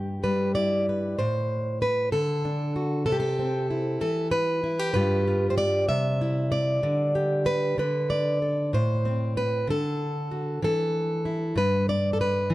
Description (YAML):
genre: folk, solo fingerstyle acoustic guitar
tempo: 64 BPM (dotted quarters)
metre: 6/8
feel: straight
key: unclear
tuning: A4 = 440 Hz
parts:
  - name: fingerpicked plugged-in steel-string acoustic guitar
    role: solo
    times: 0.0-12.5 s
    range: G2 to E5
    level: -23 LUFS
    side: equal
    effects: none
room: little or no reverb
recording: dry, close 1970s-style studio recording, lossy compression artefacts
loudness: -23 LUFS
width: side -17 dB against mid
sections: 0.0-1.2 A section; 1.2-12.5 B section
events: none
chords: 0.0 G6; 1.2 N.C.; 2.1 D; 3.1 Am/C; 4.0 Em; 5.0 G7; 5.9 C; 6.8 Dsus4; 7.8 D5; 8.7 Am; 9.7 D; 10.6 N.C.